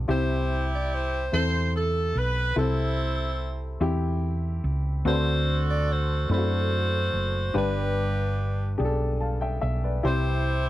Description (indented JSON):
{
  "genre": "gospel",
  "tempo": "48 BPM (dotted quarters)",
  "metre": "6/8",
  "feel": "straight",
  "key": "C major",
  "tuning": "A4 = 440 Hz",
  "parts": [
    { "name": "warm baby grand piano", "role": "accompaniment", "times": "0.0-10.7 s", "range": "G2 to B5", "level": "-30 LUFS", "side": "left 3 dB", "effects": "none" },
    { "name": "hollow-body short-scale fingered electric bass", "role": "bass", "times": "0.0-10.7 s", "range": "F#1 to F#2", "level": "-26 LUFS", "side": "right 1 dB", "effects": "none" },
    { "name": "bright saxophone section", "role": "melody", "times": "0.1-10.7 s", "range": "D4 to D5", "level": "-28 LUFS", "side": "right 1 dB", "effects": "none" }
  ],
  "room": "little or no reverb",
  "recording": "dry, close 1970s-style studio recording",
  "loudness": "-23 LUFS",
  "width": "side -15 dB against mid",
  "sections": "0.1-10.7 A section",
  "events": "none",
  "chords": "0.1 C; 2.6 Am/C; 5.1 D7; 7.5 G; 10.0 C",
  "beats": "| 0.08 1.33 | 2.57 3.81 | 5.06 6.30 | 7.54 8.79 | 10.03"
}